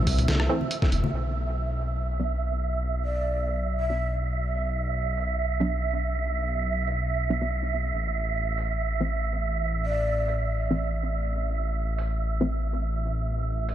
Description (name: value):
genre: deep dubstep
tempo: 141 BPM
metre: 4/4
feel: swing 54% on 16ths, half-time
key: B phrygian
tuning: A4 = 440 Hz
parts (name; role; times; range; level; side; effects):
- filtered dub chord stab; stabs; 0.0-13.7 s; E3 to D4; -34 LUFS; equal; chorus, dub echo
- dark detuned saw bass; bass; 0.0-13.7 s; E1 to C2; -27 LUFS; equal; none
- wind-like tuned noise texture; texture; 0.0-13.7 s; E5; -31 LUFS; right 7 dB; built-in reverb
- electronic kick drum; drums; 0.1-0.9 s; none; -25 LUFS; equal; none
- trip hop sampler-style drum kit; drums; 0.1-13.7 s; hi-hat, rim click, snare drum; -32 LUFS; equal; low-pass filter on hats, low-pass filter on snare
- congas; percussion; 0.2-1.1 s; none; -31 LUFS; left 2 dB; none
- breathy mellow shakuhachi; melody; 3.0-4.1, 9.9-10.5 s; D5 to E5; -35 LUFS; left 2 dB; dub echo
room: light reverb, digital ambience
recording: none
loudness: -25 LUFS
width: side -11 dB against mid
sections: 0.0-1.1 A section; 1.1-13.7 B section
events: none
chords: 0.0 Am; 1.1 Bm; 7.9 Am